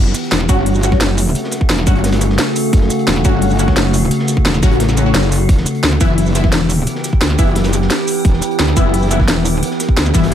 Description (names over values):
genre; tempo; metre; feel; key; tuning
dark technical drum and bass; 174 BPM; 4/4; straight; F# phrygian; A4 = 440 Hz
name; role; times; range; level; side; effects
metallic inharmonic drone; sustained chords; 0.0-10.3 s; C#3 to G4; -19 LUFS; equal; chorus, built-in reverb, phaser, vintage 12-bit sampler grit, sidechain pumping
metallic wobble bass; bass; 0.0-10.3 s; E1 to D2; -16 LUFS; equal; distortion, chorus, tube saturation, sidechain pumping
crunchy breakbeat drum kit; drums; 0.1-10.3 s; hi-hat, snare drum; -28 LUFS; equal; none
drum and bass drum kit; drums; 0.1-10.3 s; hi-hat, shaker, snare drum; -19 LUFS; equal; none
orchestra-hit-like synth stab; stabs; 0.5-10.2 s; E3 to F#4; -20 LUFS; left 2 dB; built-in reverb, phaser, digital delay
electronic kick drum; drums; 0.5-10.2 s; none; -13 LUFS; equal; none
room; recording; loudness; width
light reverb; none; -12 LUFS; side -10 dB against mid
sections
0.0-10.3 A section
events
none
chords
0.0 F#m; 5.5 Em